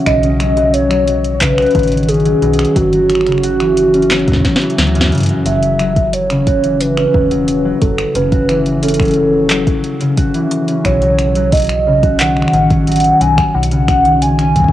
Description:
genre	IDM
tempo	89 BPM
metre	4/4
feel	straight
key	F# dorian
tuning	A4 = 441 Hz
part	concert harp	arpeggios	0.0-14.7 s	F#2 to F#4	-15 LUFS	left 1 dB	low-pass filter, tape echo
part	warbly nostalgic lead	melody	0.1-14.7 s	F#4 to G#5	-15 LUFS	right 1 dB	wide subtle chorus, tape echo
part	metallic FM bass	bass	0.1-14.7 s	E1 to G2	-20 LUFS	equal	none
part	booming analog drum machine	drums	0.1-14.7 s	finger snaps, handclaps, hi-hat, snare drum	-20 LUFS	equal	small room ambience, cassette tape
part	electronic kick drum	drums	0.1-14.7 s	none	-16 LUFS	equal	small room ambience, cassette tape
room	light reverb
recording	home recording on cassette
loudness	-11 LUFS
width	side -13 dB against mid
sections	0.0-5.5 A section; 5.5-14.7 A section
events	drum fill 4.1-5.5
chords	0.1 B7; 2.8 G5; 5.5 F#m7; 10.8 B7

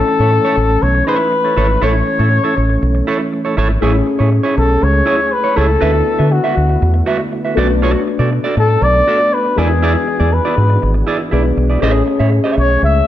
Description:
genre	disco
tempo	120 BPM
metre	4/4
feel	straight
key	unclear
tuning	A4 = 439 Hz
part	breathy flugelhorn	melody	0.0-13.1 s	F#4 to E5	-15 LUFS	left 2 dB	none
part	dark grand piano	accompaniment	0.0-13.1 s	G#3 to C#5	-21 LUFS	left 4 dB	none
part	mellow tonewheel organ	sustained chords	0.0-13.1 s	D3 to G#4	-22 LUFS	right 1 dB	chorus vibrato, slow rotary speaker
part	clean electric guitar	accompaniment	0.1-13.0 s	E4 to E5	-20 LUFS	right 4 dB	none
part	deep dub fingered electric bass	bass	0.2-13.0 s	G#1 to D3	-14 LUFS	equal	none
room	moderate large studio reverb, RT60 1.3 s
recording	dark, warm production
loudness	-12 LUFS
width	side -12 dB against mid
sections	0.0-3.8 A section; 3.8-13.1 B section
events	flugelhorn solo 3.8-13.1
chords	0.0 A; 3.8 Amaj7; 5.8 D69; 7.6 Bm7; 9.6 E7; 11.8 Amaj7

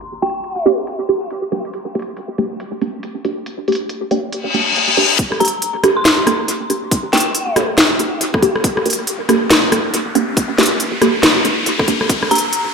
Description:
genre	deep dubstep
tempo	139 BPM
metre	4/4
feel	swing 61% on 16ths, half-time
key	G minor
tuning	A4 = 440 Hz
part	garage drum kit	drums	0.0-12.6 s	hi-hat, rim click, snare drum	-15 LUFS	left 1 dB	low-pass filter on hats, low-pass filter on snare, low-pass filter on room, analog delay
part	dark detuned synth bell	melody	0.2-0.7, 5.4-7.6, 12.3-12.7 s	G5 to C6	-22 LUFS	left 2 dB	chorus, low-pass filter, dub echo
part	filtered dub chord stab	stabs	0.2-12.5 s	Bb3 to G4	-19 LUFS	right 2 dB	phaser, wide subtle chorus, dub echo
part	reverse cymbal and riser	sound effects	4.4-12.7 s	none	-20 LUFS	left 4 dB	none
part	electronic kick drum	drums	5.2-12.2 s	none	-20 LUFS	equal	high-pass filter on kick, high-pass filter on room
room	wet echo chamber reverb, RT60 1.5 s, digital ambience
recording	echo-heavy mix, low-pass filter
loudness	-14 LUFS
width	side -5 dB against mid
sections	0.0-5.2 A section; 5.2-12.7 B section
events	filter sweep 0.0-5.2; reverse cymbal 4.4-5.2; build-up 5.2-12.7; riser 5.2-12.7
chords	0.0 Gm

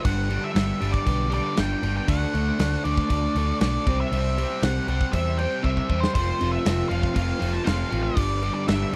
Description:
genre	classic rock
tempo	118 BPM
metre	4/4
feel	straight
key	unclear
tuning	A4 = 439 Hz
part	biting overdriven guitar	riff	0.0-9.0 s	F2 to D4	-29 LUFS	equal	spring reverb
part	big rock drum kit	drums	0.0-9.0 s	crash cymbal, kick drum, snare drum	-30 LUFS	equal	none
part	octave-fuzz lead guitar	melody	0.1-8.9 s	C5 to A5	-32 LUFS	equal	distortion
part	picked electric bass	bass	0.1-9.0 s	F1 to E2	-29 LUFS	equal	none
part	ensemble organ-string	sustained chords	6.2-9.0 s	C4 to D5	-40 LUFS	equal	none
room	little or no reverb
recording	dry, close 1970s-style studio recording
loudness	-24 LUFS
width	mono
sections	0.0-9.0 A section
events	drum fill 5.6-6.1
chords	0.0 G; 2.1 D; 3.9 C; 6.1 F; 8.2 G

